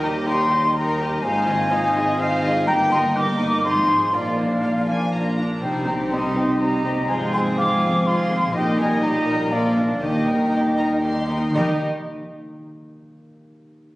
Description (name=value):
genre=cinematic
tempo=123 BPM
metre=3/4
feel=straight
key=Eb major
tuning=A4 = 436 Hz
part: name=warm studio violin section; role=melody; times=0.0-11.8 s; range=F4 to C6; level=-32 LUFS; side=left 1 dB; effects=none
part: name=clear clarinet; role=second line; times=0.0-11.8 s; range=Eb4 to G5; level=-27 LUFS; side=equal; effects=none
part: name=mellow silver concert flute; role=second line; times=0.0-11.8 s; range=Eb5 to D6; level=-24 LUFS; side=equal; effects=none
part: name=warm studio violin section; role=second line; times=0.0-11.8 s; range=C4 to C5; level=-32 LUFS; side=left 1 dB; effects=none
part: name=rich studio viola section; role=accompaniment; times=0.0-11.8 s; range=G3 to G4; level=-28 LUFS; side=right 1 dB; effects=none
part: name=mellow French horn section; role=sustained chords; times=0.0-11.8 s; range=F3 to F4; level=-27 LUFS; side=equal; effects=none
part: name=concert harp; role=arpeggios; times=0.0-13.1 s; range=G2 to Eb5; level=-29 LUFS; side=left 1 dB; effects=none
part: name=warm chamber double bass section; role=bass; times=0.0-11.8 s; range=G1 to Eb2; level=-29 LUFS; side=equal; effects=none
part: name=warm studio cello section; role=bass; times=0.0-11.8 s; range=Eb2 to Eb3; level=-27 LUFS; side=equal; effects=none
room=wet scoring stage reverb, RT60 1.6 s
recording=recorded on a phone in the room, club reverb, compression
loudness=-18 LUFS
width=side -18 dB against mid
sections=0.0-11.5 A section; 11.5-13.1 B section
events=none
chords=0.0 Eb; 1.2 Ab6; 2.7 Eb/G; 3.6 Fm7/Ab; 4.1 Bb; 5.6 Cm; 7.1 Fm/Ab; 8.5 Eb/Bb; 9.5 Bb; 10.0 Eb